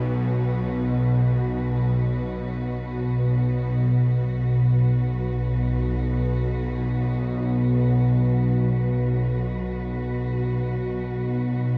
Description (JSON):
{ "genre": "ambient", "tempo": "free time", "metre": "none", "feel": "none", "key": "unclear", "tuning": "A4 = 439 Hz", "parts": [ { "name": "warm symphonic cello section", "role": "sustained chords", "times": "0.0-11.8 s", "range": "B2 to B4", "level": "-38 LUFS", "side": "equal", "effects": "none" }, { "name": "bowed-like drone", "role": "drone", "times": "0.0-11.8 s", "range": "B1 to B2", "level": "-24 LUFS", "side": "equal", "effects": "built-in reverb, phaser" } ], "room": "wet cathedral reverb, RT60 6.1 s", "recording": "dark, warm production, nothing above 10.6 kHz", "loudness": "-23 LUFS", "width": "mono", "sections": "0.0-4.0 A section; 4.0-11.8 B section", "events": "fade-in on cello section 4.0-11.8; filter sweep on synth drone 4.0-11.8", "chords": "0.0 B5" }